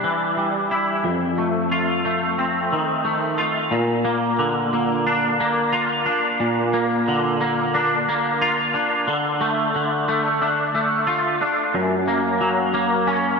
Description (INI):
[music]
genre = rock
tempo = 90 BPM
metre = 4/4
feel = straight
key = Bb major from 3.7 s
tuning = A4 = 443 Hz
[part]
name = twangy electric guitar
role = solo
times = 0.0-13.4 s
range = F2 to F4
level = -18 LUFS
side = equal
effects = ensemble chorus, ping-pong delay
[sound]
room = wet lush hall reverb, RT60 2.6 s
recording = dreamy mix soaked in reverb, nothing above 8.0 kHz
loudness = -18 LUFS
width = side -4 dB against mid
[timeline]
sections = 0.0-3.7 A section; 3.7-13.4 B section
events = none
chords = 0.0 Cadd9 (rootless); 1.0 F7; 3.7 Bb; 9.1 Dm; 11.7 Gb